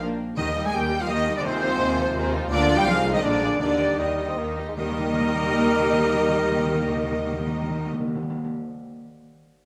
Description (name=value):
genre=quick classical-period movement for symphony orchestra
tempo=150-172 BPM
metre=3/4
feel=straight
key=Eb major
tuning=A4 = 440 Hz
part: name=rich studio violin section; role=melody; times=0.0-7.9 s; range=C5 to Ab5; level=-32 LUFS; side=equal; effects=none
part: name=rich studio violin section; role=second line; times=0.0-7.9 s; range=C4 to Eb5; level=-37 LUFS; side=equal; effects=none
part: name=rich studio viola section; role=accompaniment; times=0.0-7.9 s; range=D3 to Eb4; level=-32 LUFS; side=equal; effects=none
part: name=mellow French horn section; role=sustained chords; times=0.0-7.9 s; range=Ab3 to Ab4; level=-35 LUFS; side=equal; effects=none
part: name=warm studio double bass section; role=bass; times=0.0-7.9 s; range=Bb1 to Eb2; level=-34 LUFS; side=equal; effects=none
part: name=mellow clarinet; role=second line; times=0.4-7.9 s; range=C4 to Bb4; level=-32 LUFS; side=equal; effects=none
part: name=mellow hollow flute section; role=second line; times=0.4-7.9 s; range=C5 to Ab5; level=-36 LUFS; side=equal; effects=none
part: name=clear trumpet section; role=stabs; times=0.4-7.9 s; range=Bb4 to Ab5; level=-31 LUFS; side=equal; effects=none
part: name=rich studio cello section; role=bass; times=0.4-7.9 s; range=C3 to Ab3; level=-33 LUFS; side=equal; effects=none
part: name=timpani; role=percussion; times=0.4-8.5 s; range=Eb3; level=-32 LUFS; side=equal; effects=none
part: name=mellow bassoon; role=accompaniment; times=4.0-4.7 s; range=G3 to C4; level=-34 LUFS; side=equal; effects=none
room=wet recital hall reverb, RT60 1.9 s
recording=none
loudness=-23 LUFS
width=mono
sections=0.0-4.8 A section; 4.8-7.1 B section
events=slowing down 2.0-4.8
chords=0.0 Bb; 0.4 Eb; 1.4 Fm7/Eb; 2.5 Bb/D; 2.9 Ab/C; 3.2 Bb7; 3.6 Eb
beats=0.02 | 0.38 0.74 1.10 | 1.45 1.80 2.15 | 2.50 2.86 3.23 | 3.60 3.99 4.38 | 4.78 5.17 5.57 | 5.96 6.35 6.74